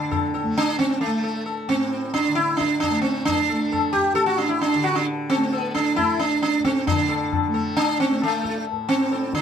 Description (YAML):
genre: indian classical, Hindustani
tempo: 133 BPM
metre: 4/4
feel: straight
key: unclear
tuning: A4 = 440 Hz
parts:
  - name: sitar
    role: melody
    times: 0.0-9.4 s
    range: A3 to A4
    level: -21 LUFS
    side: right 2 dB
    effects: none
  - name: tanpura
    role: drone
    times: 0.0-9.4 s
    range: A2 to A3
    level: -30 LUFS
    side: left 1 dB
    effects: none
  - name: tabla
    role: percussion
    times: 0.1-9.4 s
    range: none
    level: -28 LUFS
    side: left 9 dB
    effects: none
room: moderate studio reverb, RT60 0.6 s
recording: none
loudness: -20 LUFS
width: side -8 dB against mid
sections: 0.0-6.9 A section; 6.9-9.4 B section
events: none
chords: none